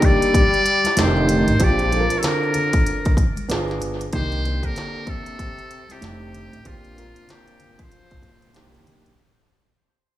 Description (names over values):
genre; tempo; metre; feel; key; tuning
hip hop, jazz-hop; 95 BPM; 4/4; swing 60% on 16ths; C dorian; A4 = 440 Hz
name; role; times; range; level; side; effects
trumpet with metal mute; melody; 0.0-8.9 s; F4 to D5; -23 LUFS; equal; dub echo
warm trombone; second line; 0.0-8.9 s; Bb2 to G3; -26 LUFS; left 4 dB; none
dark baby grand piano; accompaniment; 0.0-9.1 s; A3 to Bb4; -25 LUFS; right 3 dB; none
industrial drum kit; drums; 0.0-9.2 s; hi-hat, kick drum, snare drum; -21 LUFS; equal; none
congas and maracas; percussion; 0.0-9.2 s; none; -35 LUFS; left 1 dB; none
upright bass; bass; 1.0-9.1 s; F1 to Bb2; -23 LUFS; equal; none
room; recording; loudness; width
light reverb, small room ambience; echo-heavy mix, studio reverb; -17 LUFS; side -14 dB against mid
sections
0.0-9.2 A section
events
fade-out 0.0-9.2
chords
0.0 Cm9 (rootless); 1.0 F13; 1.6 Bb69; 3.5 G7b9; 4.1 Cm9; 6.0 F13; 6.7 Bb69; 8.6 Cm9